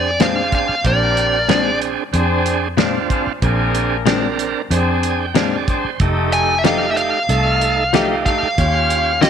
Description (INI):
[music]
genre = straight-eighth soul blues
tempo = 93 BPM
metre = 4/4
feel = straight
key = Bb mixolydian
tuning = A4 = 436 Hz
[part]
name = dark smooth lead guitar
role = melody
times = 0.0-1.8, 6.3-9.3 s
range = D5 to Ab5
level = -18 LUFS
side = equal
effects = overdrive
[part]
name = bright tonewheel organ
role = accompaniment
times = 0.0-9.3 s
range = A3 to Ab5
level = -21 LUFS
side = right 10 dB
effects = slow rotary speaker, overdrive
[part]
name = clear horn section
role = sustained chords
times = 0.0-9.2 s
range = A3 to Db5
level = -25 LUFS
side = left 10 dB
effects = none
[part]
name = vintage muted fingered electric bass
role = bass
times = 0.0-9.3 s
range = F1 to F2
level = -21 LUFS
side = equal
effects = none
[part]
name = direct-recorded clean electric guitar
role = stabs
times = 0.2-9.3 s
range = Bb2 to G4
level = -20 LUFS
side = left 9 dB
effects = none
[part]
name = cloth-damped thuddy drum kit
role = drums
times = 0.2-9.3 s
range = hi-hat, kick drum, snare drum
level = -21 LUFS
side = right 3 dB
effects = none
[sound]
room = moderate echo chamber reverb, RT60 2.0 s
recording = 1960s-style stereo with parts hard left and right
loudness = -14 LUFS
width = side -8 dB against mid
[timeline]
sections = 0.0-9.3 A section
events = tonewheel organ fill 4.7-6.0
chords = 0.0 Bb9; 6.0 F9; 8.6 Eb9